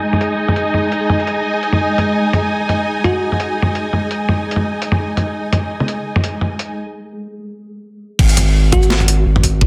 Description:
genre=half-time drum and bass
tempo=169 BPM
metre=4/4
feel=swing 56% on 16ths, half-time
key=unclear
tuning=A4 = 441 Hz
part: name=rich studio string section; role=sustained chords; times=0.0-6.8 s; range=G#3 to G#5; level=-22 LUFS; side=equal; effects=sidechain pumping, low-pass filter
part: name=pulsing gated texture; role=texture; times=0.0-6.8 s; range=G#3 to G#4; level=-26 LUFS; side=equal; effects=chorus, built-in reverb
part: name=boom bap sampler-style drum kit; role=drums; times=0.1-9.7 s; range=crash cymbal, hi-hat, shaker, snare drum, toms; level=-21 LUFS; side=equal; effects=overdrive, low-pass filter on toms, low-pass filter on snare, low-pass filter on hats, low-pass filter on cymbals, low-pass filter on perc, low-pass filter on room
part: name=bell-like FM electric piano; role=melody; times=3.0-3.5, 8.7-9.2 s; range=F#4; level=-24 LUFS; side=equal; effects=chorus, tape echo
part: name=saturated sub bass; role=bass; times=8.2-9.7 s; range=G#1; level=-16 LUFS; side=equal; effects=none
part: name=electronic kick drum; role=drums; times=8.2-9.7 s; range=none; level=-16 LUFS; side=equal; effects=none
room=moderate digital room reverb, RT60 1.3 s, digital ambience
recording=none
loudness=-17 LUFS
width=mono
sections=0.0-8.2 A section; 8.2-9.7 B section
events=break 6.8-8.2; drop 8.2-9.7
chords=0.0 G#5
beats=0.03 0.38 0.74 | 1.09 1.45 1.80 2.16 | 2.51 2.87 3.22 3.58 | 3.93 4.29 4.64 5.00 | 5.35 5.71 6.06 6.42 | 6.77 7.13 7.48 7.84 | 8.19 8.55 8.90 9.26 | 9.61

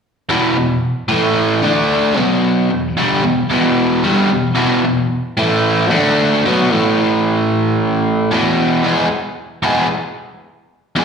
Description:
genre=rock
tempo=112 BPM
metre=4/4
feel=straight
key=unclear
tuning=A4 = 440 Hz
part: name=biting overdriven guitar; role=solo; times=0.3-11.0 s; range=E2 to G#4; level=-13 LUFS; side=equal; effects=slapback echo
room=light reverb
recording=live gig heard through the venue's PA, recital hall reverb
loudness=-13 LUFS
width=side -6 dB against mid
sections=0.3-8.8 A section; 8.8-11.0 B section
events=none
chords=0.3 E5; 1.1 A5; 1.6 D5; 2.2 B5; 2.7 E5; 5.4 A5; 5.9 D5; 6.4 B5; 6.7 A5; 8.3 E5; 8.8 E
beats=| 0.29 0.83 1.37 1.90 | 2.44 2.97 3.51 4.04 | 4.58 5.11 5.64 6.18 | 6.71 7.24 7.78 8.31 | 8.84 9.38 9.91 10.45 | 10.98

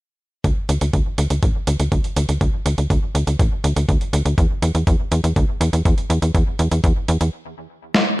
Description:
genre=italo disco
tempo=122 BPM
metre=4/4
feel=straight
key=unclear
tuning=A4 = 440 Hz
part: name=tight sequencer bass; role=bass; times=0.4-7.3 s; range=A1 to E2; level=-19 LUFS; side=equal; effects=tape echo
part: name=dusty soul sampler-style drum kit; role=drums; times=0.4-8.0 s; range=hi-hat, snare drum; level=-24 LUFS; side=right 1 dB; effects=overdrive, small room reverb
part: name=electronic kick drum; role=drums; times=0.4-6.9 s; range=none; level=-19 LUFS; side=equal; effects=overdrive, small room reverb
room=digital ambience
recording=dark, warm production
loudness=-17 LUFS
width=side -18 dB against mid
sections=0.4-8.2 A section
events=stop 7.3-8.2; drum fill 7.9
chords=none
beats=| 0.45 0.94 1.43 1.92 | 2.41 2.90 3.40 3.89 | 4.38 4.87 5.36 5.86 | 6.35 6.84 7.33 7.82

